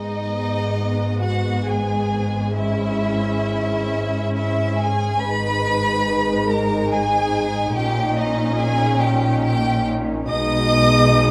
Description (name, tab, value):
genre	classical, slow romantic movement for string orchestra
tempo	70 BPM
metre	3/4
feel	uneven beats, rubato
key	G# minor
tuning	A4 = 437 Hz
part	rich chamber violin section	melody	0.0-11.3 s	D#5 to D#6	-26 LUFS	equal	none
part	clear chamber violin section	second line	0.0-11.3 s	D#4 to D#5	-28 LUFS	equal	none
part	warm chamber viola section	accompaniment	0.0-11.3 s	G#3 to D#4	-27 LUFS	equal	none
part	rich chamber cello section	bass	0.0-11.3 s	G#2 to B2	-28 LUFS	equal	none
part	rich chamber double bass section	bass	0.0-11.3 s	G#1 to B1	-26 LUFS	equal	none
room	wet large studio reverb, RT60 1.4 s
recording	none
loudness	-20 LUFS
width	mono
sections	0.0-11.3 A section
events	none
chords	0.0 G#m; 2.6 C#m/G#; 5.2 G#m; 7.8 D#5/A#; 10.3 G#m/B